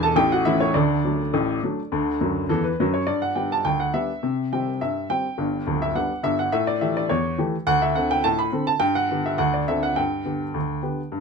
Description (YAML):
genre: ragtime piano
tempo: 104 BPM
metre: 2/4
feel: straight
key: D major, G major from 3.1 s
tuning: A4 = 440 Hz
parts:
  - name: clear upright piano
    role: solo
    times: 0.0-11.2 s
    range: D1 to B5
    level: -20 LUFS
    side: equal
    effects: none
room: light reverb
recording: close, detailed microphones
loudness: -20 LUFS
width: side -5 dB against mid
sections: 0.0-3.1 A section; 3.1-11.2 B section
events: upright piano fill 2.2-3.1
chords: 0.2 A7; 0.7 D; 3.1 G; 4.2 C5; 5.4 G; 6.5 A5; 7.7 D5; 8.8 G; 9.4 D5; 10.0 G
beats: 0.16 | 0.74 1.32 | 1.91 2.49 | 3.07 3.65 | 4.23 4.80 | 5.38 5.95 | 6.52 7.09 | 7.67 8.24 | 8.82 9.40 | 9.98 10.56 | 11.14